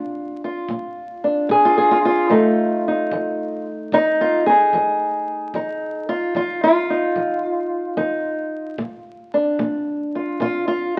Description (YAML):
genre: acoustic country blues, solo or duo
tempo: 74 BPM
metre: 4/4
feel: swing 68% on 8ths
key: F mixolydian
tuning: A4 = 440 Hz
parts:
  - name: fingerpicked old ladder-braced acoustic guitar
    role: melody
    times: 0.0-11.0 s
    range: Bb2 to Ab4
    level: -20 LUFS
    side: equal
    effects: none
  - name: kick drum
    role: drums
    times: 0.7-10.7 s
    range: none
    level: -43 LUFS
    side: equal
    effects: none
room: moderate large studio reverb, RT60 1.1 s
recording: very old 78 rpm record, vinyl crackle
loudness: -20 LUFS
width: mono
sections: 0.0-11.0 A section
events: none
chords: 0.0 Bb; 2.3 F7; 8.8 Bb